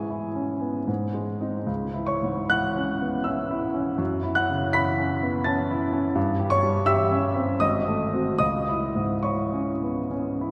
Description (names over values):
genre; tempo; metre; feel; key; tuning
classical, romantic character piece for solo piano; 69-87 BPM; 3/4; rubato; C# minor; A4 = 440 Hz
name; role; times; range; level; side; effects
warm grand piano; solo; 0.0-10.5 s; G#1 to B6; -25 LUFS; equal; none
room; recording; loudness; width
wet cathedral reverb, RT60 4.4 s; none; -25 LUFS; mono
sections
0.0-10.5 A section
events
none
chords
0.0 C#m/G#; 0.9 G#; 1.7 C#m; 4.0 F#m7; 6.2 C#dim/G; 7.6 G#7b9; 8.4 C#m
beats
0.11 0.88 | 1.68 2.52 3.27 | 3.99 4.76 5.46 | 6.16 6.87 7.61 | 8.40 9.25 10.11